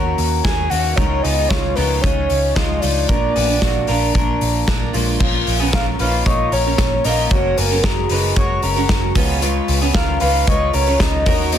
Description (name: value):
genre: jangly indie pop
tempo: 114 BPM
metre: 4/4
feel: straight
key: unclear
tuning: A4 = 440 Hz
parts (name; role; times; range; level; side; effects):
- picked twelve-string acoustic guitar; accompaniment; 0.0-11.6 s; Bb2 to Cb5; -24 LUFS; right 7 dB; wide subtle chorus
- electric guitar through a small old amp; arpeggios; 0.0-11.6 s; Ab3 to Db5; -23 LUFS; left 5 dB; analog delay
- vintage muted picked electric bass; bass; 0.0-11.6 s; Gb1 to Eb2; -21 LUFS; equal; none
- loose indie drum kit; drums; 0.2-11.6 s; crash cymbal, hi-hat, kick drum, snare drum; -20 LUFS; equal; none
- warbly nostalgic lead; melody; 0.4-11.6 s; Ab4 to Ab5; -21 LUFS; equal; chorus, analog delay
room: moderate large studio reverb, RT60 1.0 s, small room ambience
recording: dense, heavily limited modern master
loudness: -15 LUFS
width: side -9 dB against mid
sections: 0.0-5.2 A section; 5.2-11.6 B section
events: none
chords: 0.0 Ebm7; 1.0 Dbadd9; 3.1 Bb; 5.2 Bbm; 7.3 Gbadd9; 9.2 Db7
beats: 0.44 | 0.97 1.50 2.03 2.56 | 3.09 3.62 4.15 4.67 | 5.20 5.73 6.26 6.79 | 7.31 7.84 8.37 8.89 | 9.42 9.95 10.47 11.00 | 11.53